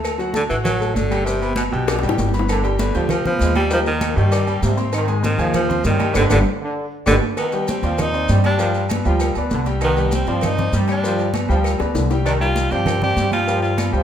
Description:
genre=latin, salsa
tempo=197 BPM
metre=4/4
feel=straight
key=C harmonic minor from 7.4 s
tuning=A4 = 438 Hz
part: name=warm concert grand piano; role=accompaniment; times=0.0-14.0 s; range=F#3 to Ab6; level=-24 LUFS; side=left 2 dB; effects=none
part: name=upright bass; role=bass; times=0.0-14.0 s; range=G1 to Ab2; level=-21 LUFS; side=equal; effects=none
part: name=agogo bells and timbales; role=percussion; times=0.0-13.9 s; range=none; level=-30 LUFS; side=right 5 dB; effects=none
part: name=claves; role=percussion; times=0.0-13.9 s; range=none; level=-36 LUFS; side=left 2 dB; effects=none
part: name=congas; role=percussion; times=0.0-14.0 s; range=none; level=-27 LUFS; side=equal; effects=none
part: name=cowbell and bongos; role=percussion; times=0.0-13.9 s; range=none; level=-29 LUFS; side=left 4 dB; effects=none
part: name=maracas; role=percussion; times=0.0-14.0 s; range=none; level=-36 LUFS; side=left 2 dB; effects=none
part: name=breathy tenor saxophone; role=melody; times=0.4-13.9 s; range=B2 to G4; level=-22 LUFS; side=equal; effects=none
part: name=brilliant trombone section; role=second line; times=2.5-14.0 s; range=B2 to Ab3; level=-26 LUFS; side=right 2 dB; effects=none
room=moderate large studio reverb, RT60 1.2 s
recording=minimal, uncompressed stereo recording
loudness=-16 LUFS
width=side -9 dB against mid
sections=0.0-7.4 A section; 7.4-14.0 B section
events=drum fill 1.9-2.5, 6.8-7.4, 11.8-12.3; band accent 6.2-7.4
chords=0.1 D; 1.3 G; 2.5 G7; 3.7 Ebmaj7; 4.9 Abmaj7; 6.2 G; 7.4 Cmadd9; 8.6 G7; 9.8 Cmadd9; 11.0 G7; 12.3 Csus2; 13.5 G7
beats=| 0.05 0.36 0.66 0.97 | 1.27 1.58 1.89 2.19 | 2.50 2.80 3.11 3.41 | 3.72 4.02 4.33 4.63 | 4.94 5.24 5.55 5.85 | 6.16 6.46 6.76 7.07 | 7.38 7.68 7.99 8.29 | 8.60 8.90 9.21 9.51 | 9.82 10.12 10.43 10.73 | 11.04 11.34 11.65 11.95 | 12.26 12.56 12.87 13.17 | 13.48 13.78

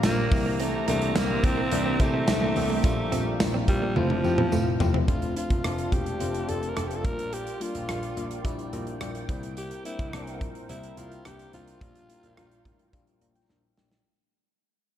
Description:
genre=1980s-style pop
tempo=107 BPM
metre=4/4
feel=straight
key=F major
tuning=A4 = 438 Hz
part: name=breathy alto saxophone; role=melody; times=0.0-13.5 s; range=F3 to Bb4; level=-31 LUFS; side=equal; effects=digital delay
part: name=FM electric piano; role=accompaniment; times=0.0-14.1 s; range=E3 to Bb5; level=-32 LUFS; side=left 5 dB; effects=chorus
part: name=sweeping resonant pad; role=sustained chords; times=0.0-14.0 s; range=E4 to Bb5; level=-37 LUFS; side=equal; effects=chorus
part: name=direct-recorded clean electric guitar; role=riff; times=0.0-5.1 s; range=G3 to C4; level=-34 LUFS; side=right 8 dB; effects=lush chorus, digital delay
part: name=warm grand piano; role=bass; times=0.0-14.0 s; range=E1 to C3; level=-32 LUFS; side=right 1 dB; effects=none
part: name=modern studio drum kit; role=drums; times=0.0-14.0 s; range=hi-hat, kick drum, rim click, snare drum, tambourine, toms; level=-28 LUFS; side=equal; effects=none
part: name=tambourine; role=percussion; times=0.0-4.9 s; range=none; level=-48 LUFS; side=right 3 dB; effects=none
room=moderate lush hall reverb, RT60 2.8 s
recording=dark, warm production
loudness=-24 LUFS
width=side -10 dB against mid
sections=0.0-5.1 A section; 5.1-14.1 B section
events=drum fill 4.0-5.1, 13.5-14.1; fade-out 5.1-14.1; FM electric piano fill 12.9-14.1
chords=0.3 C7; 2.8 Bb6; 4.0 Fmaj7; 5.1 F6; 7.0 Bb6; 9.3 C7; 11.8 Bb6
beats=0.04 | 0.60 1.16 1.72 2.28 | 2.84 3.40 3.96 4.52 | 5.08 5.64 6.20 6.76 | 7.33 7.89 8.45 9.01 | 9.57 10.13 10.69 11.25 | 11.81 12.37 12.93 13.49

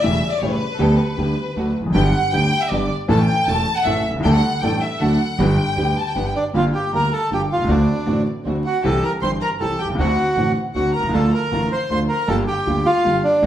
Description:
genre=tango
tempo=157 BPM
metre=3/4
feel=rubato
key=G major, G minor from 6.5 s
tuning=A4 = 442 Hz
part: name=warm studio violin section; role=second line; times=0.0-13.5 s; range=A4 to C6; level=-24 LUFS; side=left 1 dB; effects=none
part: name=clear upright piano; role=accompaniment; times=0.0-13.5 s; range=E1 to A4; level=-21 LUFS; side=equal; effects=none
part: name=warm studio string section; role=stabs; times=0.0-13.5 s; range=A3 to B4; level=-30 LUFS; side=right 3 dB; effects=none
part: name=upright bass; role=bass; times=0.0-13.5 s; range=E1 to D2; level=-23 LUFS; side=right 1 dB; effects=none
part: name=bandoneon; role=melody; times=6.4-13.4 s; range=D4 to C5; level=-21 LUFS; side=right 2 dB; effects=none
room=wet large studio reverb, RT60 0.8 s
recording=band playing live in one room, vinyl crackle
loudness=-17 LUFS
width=side -11 dB against mid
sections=0.0-6.5 A section; 6.5-13.5 B section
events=violin section solo 0.0-6.5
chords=0.0 A7; 0.8 G/D; 1.6 D; 1.9 G; 3.1 A; 4.2 Dsus4; 5.0 D; 5.4 G; 6.5 Gm7; 7.7 D7; 8.8 C; 10.0 D7; 11.1 Dm; 12.3 Gm7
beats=0.03 0.41 | 0.80 1.18 1.56 | 1.95 2.33 2.71 | 3.10 3.48 3.86 | 4.24 4.62 5.00 | 5.39 5.77 6.15 | 6.54 6.92 7.31 | 7.69 8.07 8.45 | 8.83 9.21 9.60 | 9.98 10.36 10.75 | 11.13 11.52 11.90 | 12.29 12.67 13.05 | 13.43

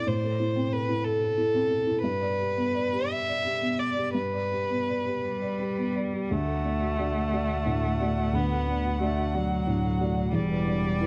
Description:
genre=neoclassical piano and strings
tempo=54-62 BPM (dotted quarters)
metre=6/8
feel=rubato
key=unclear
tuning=A4 = 440 Hz
part: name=rich violin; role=melody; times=0.0-11.1 s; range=A4 to F#5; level=-32 LUFS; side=equal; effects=none
part: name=felt-muted upright piano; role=accompaniment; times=0.0-11.1 s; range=D2 to D5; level=-32 LUFS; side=equal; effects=none
part: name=clear cello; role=second line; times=5.2-11.1 s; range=F#3 to B3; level=-32 LUFS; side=equal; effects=none
part: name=buzzing marimba with soft mallets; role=arpeggios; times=6.3-11.1 s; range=D4 to D5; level=-40 LUFS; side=equal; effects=slapback echo
part: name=rich double bass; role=bass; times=6.3-11.1 s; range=E1 to D2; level=-33 LUFS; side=equal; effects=none
room=light reverb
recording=worn, warbling old tape, cassette tape, warbly pitch drift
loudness=-27 LUFS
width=mono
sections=0.0-6.3 A section; 6.3-11.1 B section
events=none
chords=0.0 Am; 2.0 G; 6.3 D; 10.3 Em7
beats=| 0.08 1.05 | 2.03 3.09 | 4.15 5.24 | 6.31 7.33 | 8.34 9.35 | 10.34

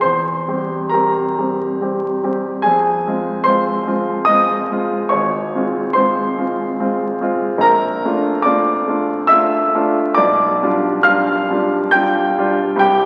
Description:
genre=classical, romantic nocturne for solo piano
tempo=66-75 BPM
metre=3/4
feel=rubato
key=F minor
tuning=A4 = 439 Hz
part: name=warm grand piano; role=solo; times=0.0-13.1 s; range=Ab1 to G6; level=-17 LUFS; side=equal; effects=none
room=wet concert hall reverb, RT60 2.0 s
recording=very old 78 rpm record, vinyl crackle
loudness=-17 LUFS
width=mono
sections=0.0-13.1 A section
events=none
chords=0.0 C7/E; 2.7 Fm; 5.1 Fm/Ab; 7.6 Bbmaj7; 10.2 G7/B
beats=| 0.04 0.93 1.80 | 2.65 3.47 4.29 | 5.14 5.97 6.79 | 7.62 8.45 9.31 | 10.18 11.06 11.94 | 12.82

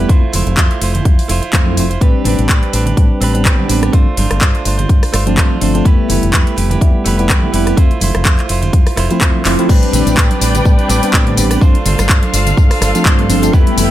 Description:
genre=filtered disco house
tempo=125 BPM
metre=4/4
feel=swing 55% on 16ths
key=A minor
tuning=A4 = 442 Hz
part: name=mellow tine electric piano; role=accompaniment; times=0.0-13.9 s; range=F3 to B4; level=-17 LUFS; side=equal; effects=phaser, sidechain pumping, low-pass filter
part: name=direct-recorded clean electric guitar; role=riff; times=0.0-13.9 s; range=A3 to C5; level=-21 LUFS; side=right 5 dB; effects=sidechain pumping, low-pass filter
part: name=fingered electric bass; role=bass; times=0.0-13.9 s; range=F1 to A2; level=-17 LUFS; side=equal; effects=sidechain pumping, low-pass filter
part: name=electronic kick drum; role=drums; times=0.1-13.6 s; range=none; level=-11 LUFS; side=equal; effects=studio reverb
part: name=house drum kit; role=drums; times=0.1-13.9 s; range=crash cymbal, handclaps, hi-hat, rim click, tambourine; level=-18 LUFS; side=left 1 dB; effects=sidechain pumping on hats, studio reverb, sidechain pumping on cymbals, sidechain pumping on perc
part: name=tube shaker and congas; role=percussion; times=0.1-13.9 s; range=none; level=-25 LUFS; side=right 4 dB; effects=none
part: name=muted studio string section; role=sustained chords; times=9.7-13.9 s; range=A4 to B5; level=-20 LUFS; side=left 2 dB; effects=vintage 12-bit sampler grit, sidechain pumping, low-pass filter
room=digital ambience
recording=none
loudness=-10 LUFS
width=side -13 dB against mid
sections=0.0-9.7 A section; 9.7-13.9 B section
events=drum fill 9.5; band accent 9.5; drop 9.7-13.9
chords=0.1 Fmaj7; 2.0 Am11; 3.9 G9sus4; 5.9 Fmaj9#11; 7.8 Fmaj7; 9.7 Am11; 11.6 G9sus4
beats=| 0.10 0.58 1.06 1.54 | 2.02 2.50 2.98 3.46 | 3.94 4.42 4.90 5.38 | 5.86 6.34 6.82 7.30 | 7.78 8.26 8.74 9.22 | 9.70 10.18 10.66 11.14 | 11.62 12.10 12.58 13.06 | 13.54

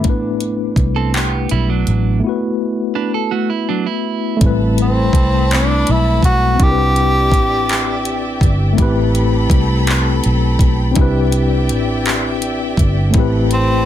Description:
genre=slow six-eight R&B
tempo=55 BPM (dotted quarters)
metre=6/8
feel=straight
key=unclear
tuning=A4 = 437 Hz
part: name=mellow tine electric piano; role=accompaniment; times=0.0-13.9 s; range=G3 to B4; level=-19 LUFS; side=left 3 dB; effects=medium stereo tremolo, plate reverb
part: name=vintage muted fingered electric bass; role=bass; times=0.0-13.8 s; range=G1 to C2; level=-17 LUFS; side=equal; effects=none
part: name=smooth R&B drum kit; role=drums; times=0.0-13.7 s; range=handclaps, hi-hat, kick drum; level=-16 LUFS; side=equal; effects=none
part: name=clean electric guitar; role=second line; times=1.0-4.4 s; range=F#3 to B4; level=-20 LUFS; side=right 10 dB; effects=plate reverb
part: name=warm studio string section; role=sustained chords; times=4.4-13.9 s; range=C4 to B5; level=-26 LUFS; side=left 1 dB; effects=plate reverb
part: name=breathy tenor saxophone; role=melody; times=4.8-8.4, 13.5-13.9 s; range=C4 to G4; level=-18 LUFS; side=equal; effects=plate reverb, tape echo
room=light reverb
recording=dense, heavily limited modern master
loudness=-13 LUFS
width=side -11 dB against mid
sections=0.0-4.4 A section; 4.4-13.9 B section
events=break 2.2-4.4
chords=0.0 Amadd9; 2.2 B7sus4; 4.4 Am9; 6.6 Cmaj9; 8.8 Am9; 11.0 Cmaj9; 13.1 Am9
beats=| 0.05 1.14 | 2.23 3.32 | 4.41 5.50 | 6.59 7.68 | 8.78 9.87 | 10.96 12.05 | 13.14

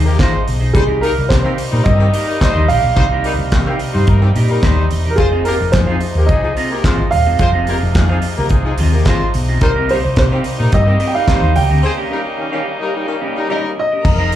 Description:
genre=disco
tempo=108 BPM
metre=4/4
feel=straight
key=F minor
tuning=A4 = 440 Hz
part: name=clean electric guitar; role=accompaniment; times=0.0-14.4 s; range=C4 to F5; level=-25 LUFS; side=right 3 dB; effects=slapback echo
part: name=muted French horn section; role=sustained chords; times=0.0-14.4 s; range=C3 to Eb4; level=-25 LUFS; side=left 1 dB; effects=none
part: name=hollow-body short-scale fingered electric bass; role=bass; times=0.0-14.4 s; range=Eb1 to C3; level=-15 LUFS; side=equal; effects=none
part: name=warm horn section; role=stabs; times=0.1-13.7 s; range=Eb3 to C5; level=-22 LUFS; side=left 3 dB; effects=slapback echo
part: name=damped 70s drum kit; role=drums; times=0.2-14.4 s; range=crash cymbal, handclaps, hi-hat, kick drum, snare drum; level=-18 LUFS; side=equal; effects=none
part: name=dark grand piano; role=melody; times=0.7-14.4 s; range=Ab4 to G5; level=-19 LUFS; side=right 2 dB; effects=slapback echo
part: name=clear studio string section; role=second line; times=14.0-14.4 s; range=Bb4 to Bb5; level=-22 LUFS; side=left 6 dB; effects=slapback echo
room=light reverb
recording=live gig heard through the venue's PA, club reverb, faint mains hum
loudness=-12 LUFS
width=side -12 dB against mid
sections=0.0-14.0 A section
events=break 11.8-14.0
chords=0.0 Fm7; 0.7 Cm7; 5.2 Fm7; 9.6 Cm7; 11.8 Eb7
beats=0.19 | 0.74 1.30 1.85 2.41 | 2.96 3.52 4.07 4.63 | 5.18 5.74 6.29 6.84 | 7.40 7.95 8.51 9.06 | 9.62 10.17 10.72 11.28 | 11.83 12.39 12.94 13.49 | 14.05

